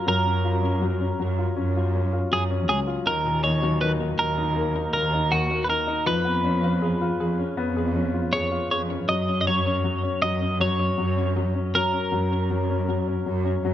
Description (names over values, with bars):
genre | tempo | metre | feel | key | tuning
pop ballad | 80 BPM | 4/4 | straight | F# major | A4 = 440 Hz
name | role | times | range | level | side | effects
twelve-string electric guitar | melody | 0.0-13.7 s | F#4 to D#5 | -26 LUFS | right 1 dB | none
clear grand piano | accompaniment | 0.0-13.7 s | A#2 to G#4 | -27 LUFS | left 4 dB | none
warm studio cello section | bass | 0.1-13.7 s | C#2 to F#2 | -25 LUFS | right 1 dB | none
room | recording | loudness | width
small room ambience | none | -21 LUFS | side -11 dB against mid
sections
0.0-13.7 A section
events
none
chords
0.0 F#maj7; 3.1 D#m; 6.1 C#7/E#; 9.1 F#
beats
| 0.07 0.82 1.58 2.32 | 3.08 3.82 4.57 5.32 | 6.07 6.82 7.57 8.33 | 9.09 9.85 10.61 11.37 | 12.12 12.88 13.64